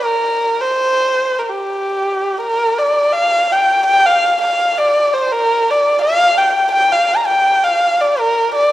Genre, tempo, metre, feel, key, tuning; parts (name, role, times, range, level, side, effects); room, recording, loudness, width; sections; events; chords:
chinese traditional; 83 BPM; 2/4; rubato; G yu mode; A4 = 440 Hz
dark erhu; solo; 0.0-8.7 s; G4 to Bb5; -12 LUFS; equal
moderate recital hall reverb, RT60 1.5 s; dark, warm production; -12 LUFS; side -14 dB against mid
0.0-3.1 A section; 3.1-8.7 B section